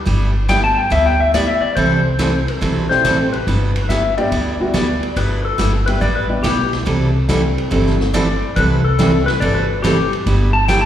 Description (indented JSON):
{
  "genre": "country, western swing",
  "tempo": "141 BPM",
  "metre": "4/4",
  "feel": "swing 67% on 8ths",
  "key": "G major",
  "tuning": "A4 = 440 Hz",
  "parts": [
    { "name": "picked steel-string acoustic guitar", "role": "accompaniment", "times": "0.1-10.8 s", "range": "C3 to A4", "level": "-20 LUFS", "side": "right 3 dB", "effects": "slapback echo" },
    { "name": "upright bass", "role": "bass", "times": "0.1-10.9 s", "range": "G1 to D2", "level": "-18 LUFS", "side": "equal", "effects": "none" },
    { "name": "vintage drum kit", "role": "drums", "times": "0.1-10.8 s", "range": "hi-hat, kick drum, ride cymbal, snare drum", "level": "-25 LUFS", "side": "equal", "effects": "none" },
    { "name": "clean lap steel guitar", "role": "second line", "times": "0.5-10.9 s", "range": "G4 to A5", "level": "-19 LUFS", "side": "left 4 dB", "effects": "slapback echo" },
    { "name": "warm upright piano", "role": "accompaniment", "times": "0.5-9.2 s", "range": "G3 to A4", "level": "-22 LUFS", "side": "left 2 dB", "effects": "slapback echo" }
  ],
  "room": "light reverb",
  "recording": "live gig heard through the venue's PA, recital hall reverb",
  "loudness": "-14 LUFS",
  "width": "side -10 dB against mid",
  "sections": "0.1-10.9 A section",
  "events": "electric slide guitar solo 0.1-10.9",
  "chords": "0.1 G6; 1.8 C6; 3.5 G6; 6.9 C6; 10.3 G6"
}